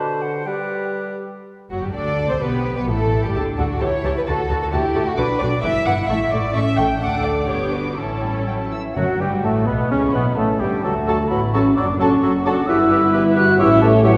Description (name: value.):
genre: quick classical-period movement for symphony orchestra.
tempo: 129 BPM.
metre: 2/4.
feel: rubato.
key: G major, D major from 5.2 s.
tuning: A4 = 439 Hz.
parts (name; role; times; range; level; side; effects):
bright clarinet; second line; 0.0-1.2, 9.0-14.1 s; F#3 to G4; -30 LUFS; equal; none.
hollow concert flute; second line; 0.0-1.0, 8.2-14.2 s; E5 to F#6; -26 LUFS; equal; none.
warm oboe; second line; 0.0-1.2, 9.0-14.1 s; B3 to C#5; -31 LUFS; equal; none.
warm bassoon; accompaniment; 0.0-1.2, 9.0-14.2 s; F#2 to G3; -29 LUFS; equal; none.
muted studio violin section; melody; 1.7-14.2 s; G3 to E6; -32 LUFS; equal; none.
muted studio violin section; second line; 1.7-14.2 s; B3 to G5; -27 LUFS; equal; none.
muted studio viola section; accompaniment; 1.7-14.2 s; D3 to C#5; -28 LUFS; equal; none.
muted studio double bass section; bass; 1.7-14.2 s; F#1 to D2; -27 LUFS; equal; none.
muted studio cello section; bass; 1.9-14.2 s; D2 to A4; -28 LUFS; equal; none.
mellow French horn section; sustained chords; 8.2-14.2 s; E3 to F#4; -21 LUFS; equal; none.
timpani; percussion; 9.0-9.6 s; D3; -34 LUFS; equal; none.
room: wet concert hall reverb, RT60 1.9 s.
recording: recorded in a church or concert hall.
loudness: -19 LUFS.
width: mono.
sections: 0.0-1.5 A section; 1.5-9.0 B section; 9.0-14.2 A section.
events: none.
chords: 0.5 G; 1.5 N.C.; 1.9 D5; 2.4 G/B; 3.3 D5; 3.8 A7 (rootless); 4.3 D; 5.2 Bm; 5.6 Em/G; 6.1 A; 7.0 D; 7.5 G; 8.0 A; 9.0 Gmaj9; 9.9 A7; 10.9 D; 11.8 D/F#; 12.7 Em/G; 13.6 A7.